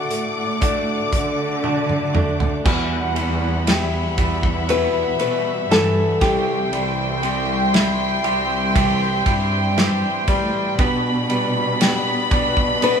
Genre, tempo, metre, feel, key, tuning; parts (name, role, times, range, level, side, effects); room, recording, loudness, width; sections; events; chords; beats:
pop ballad; 59 BPM; 4/4; straight; E minor; A4 = 440 Hz
nylon-string guitar; melody; 0.0-13.0 s; F#4 to B4; -22 LUFS; left 4 dB
clear concert grand piano; accompaniment; 0.0-13.0 s; B2 to E4; -26 LUFS; left 2 dB
rich studio string section; sustained chords; 0.0-13.0 s; G3 to D6; -27 LUFS; left 3 dB
direct-recorded clean electric guitar; arpeggios; 0.0-13.0 s; E2 to B4; -28 LUFS; right 5 dB; spring reverb
dark symphonic cello section; bass; 0.0-13.0 s; C2 to D3; -24 LUFS; equal
loose indie drum kit; drums; 0.1-13.0 s; crash cymbal, hi-hat, kick drum, ride cymbal, snare drum, toms; -22 LUFS; right 1 dB
warm studio violin section; second line; 2.6-13.0 s; E5 to B5; -24 LUFS; right 1 dB
moderate large studio reverb, RT60 0.9 s; band playing live in one room; -17 LUFS; side -7 dB against mid
0.0-2.7 A section; 2.7-13.0 B section
drum fill 1.6-2.7
0.0 D; 2.7 Emadd9; 6.2 C; 10.8 G/B
0.62 1.64 | 2.65 3.67 4.69 5.71 | 6.72 7.74 8.76 9.77 | 10.79 11.81 12.82